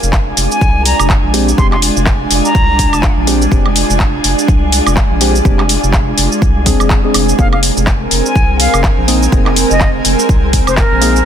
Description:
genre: deep house.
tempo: 124 BPM.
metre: 4/4.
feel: swing 58% on 16ths.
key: F dorian.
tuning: A4 = 440 Hz.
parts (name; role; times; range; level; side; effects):
soft string machine; sustained chords; 0.0-11.3 s; Ab3 to D5; -20 LUFS; equal; ensemble chorus, sidechain pumping.
round analog bass; bass; 0.0-11.2 s; F1 to C2; -16 LUFS; equal; none.
house drum kit; drums; 0.0-11.2 s; handclaps, hi-hat, shaker, woodblock; -16 LUFS; equal; none.
airy breathy pad; texture; 0.0-11.3 s; Ab3 to Ab5; -18 LUFS; right 2 dB; chorus, sidechain pumping.
electronic kick drum; drums; 0.1-10.9 s; none; -12 LUFS; equal; none.
bright concert flute; melody; 0.5-3.1, 7.4-11.3 s; Bb4 to C6; -18 LUFS; left 1 dB; dub echo.
percussive organ stab; stabs; 1.3-11.2 s; Ab3 to Ab4; -19 LUFS; left 1 dB; chorus, dub echo.
room: light reverb.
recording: dense, heavily limited modern master.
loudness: -9 LUFS.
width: side -9 dB against mid.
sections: 0.0-11.3 A section.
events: none.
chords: 0.0 Fm69; 7.4 Abadd9/F.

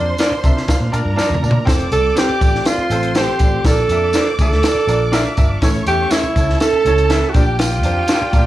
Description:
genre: uptempo 1960s-style soul.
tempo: 122 BPM.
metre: 4/4.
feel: straight.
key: unclear.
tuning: A4 = 440 Hz.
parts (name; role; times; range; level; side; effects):
bright studio violin section; second line; 0.0-8.5 s; G4 to D6; -26 LUFS; right 1 dB; none.
warm upright piano; accompaniment; 0.0-8.5 s; A2 to F5; -23 LUFS; left 1 dB; none.
vintage muted fingered electric bass; bass; 0.0-8.5 s; F1 to C3; -19 LUFS; equal; none.
mellow electric guitar; stabs; 0.2-8.2 s; C4 to D5; -22 LUFS; right 3 dB; none.
compact cocktail drum kit; drums; 0.2-8.4 s; hi-hat, kick drum, snare drum, toms; -17 LUFS; equal; none.
tambourine; percussion; 0.2-8.4 s; none; -32 LUFS; right 1 dB; none.
breathy tenor saxophone; melody; 1.9-8.5 s; E4 to A4; -17 LUFS; right 2 dB; none.
room: light reverb.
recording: small room ambience.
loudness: -13 LUFS.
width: side -14 dB against mid.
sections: 0.0-8.5 A section.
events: drum fill 1.2-1.7.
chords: 0.0 Bb; 1.7 F; 3.6 Bb; 5.6 A; 7.3 Bb.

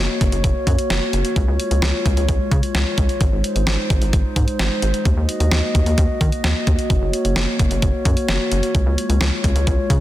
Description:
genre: synth-pop.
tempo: 130 BPM.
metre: 4/4.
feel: straight.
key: unclear.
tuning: A4 = 440 Hz.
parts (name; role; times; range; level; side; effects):
glass harmonica; sustained chords; 0.0-10.0 s; Ab3 to Eb5; -23 LUFS; left 1 dB; none.
rubbery square bass; bass; 0.0-10.0 s; Gb1 to Eb3; -19 LUFS; equal; none.
clean 12-bit digital drum machine; drums; 0.2-10.0 s; hi-hat, kick drum, snare drum; -19 LUFS; equal; none.
room: light reverb.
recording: dense, heavily limited modern master.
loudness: -16 LUFS.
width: side -14 dB against mid.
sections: 0.0-10.0 A section.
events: none.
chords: 0.0 Gb; 1.4 Db; 3.2 Ab; 5.1 Ebm; 6.9 Gb; 8.7 Db.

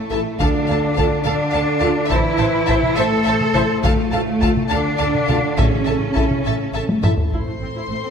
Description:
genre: cinematic, epic orchestral film score.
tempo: 69 BPM (dotted quarters).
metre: 6/8.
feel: straight.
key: D minor.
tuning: A4 = 441 Hz.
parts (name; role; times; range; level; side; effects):
warm trombone section; sustained chords; 0.0-7.0 s; A2 to A3; -23 LUFS; right 2 dB; none.
rich symphonic cello section; bass; 0.0-8.1 s; A2 to A4; -22 LUFS; equal; none.
warm symphonic violin section; melody; 0.1-8.1 s; A5 to C6; -28 LUFS; left 2 dB; none.
clear studio violin section; second line; 0.1-8.1 s; C5 to F5; -29 LUFS; left 3 dB; none.
rich symphonic viola section; accompaniment; 0.1-8.1 s; A3 to C5; -28 LUFS; right 2 dB; none.
mellow French horn section; sustained chords; 0.1-8.1 s; C4 to C5; -28 LUFS; left 4 dB; none.
rich symphonic double bass section; bass; 0.1-7.9 s; A1 to D2; -26 LUFS; right 3 dB; none.
solo taiko drums; drums; 0.4-8.1 s; none; -22 LUFS; left 1 dB; none.
timpani; percussion; 0.4-1.2, 3.8-8.1 s; A2 to D3; -28 LUFS; left 2 dB; none.
room: wet scoring stage reverb, RT60 1.6 s.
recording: none.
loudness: -16 LUFS.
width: side -7 dB against mid.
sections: 0.0-7.3 A section.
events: drum fill 6.9-7.3.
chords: 0.4 Dm; 2.1 Am; 3.8 Dm; 5.6 A; 7.3 Am.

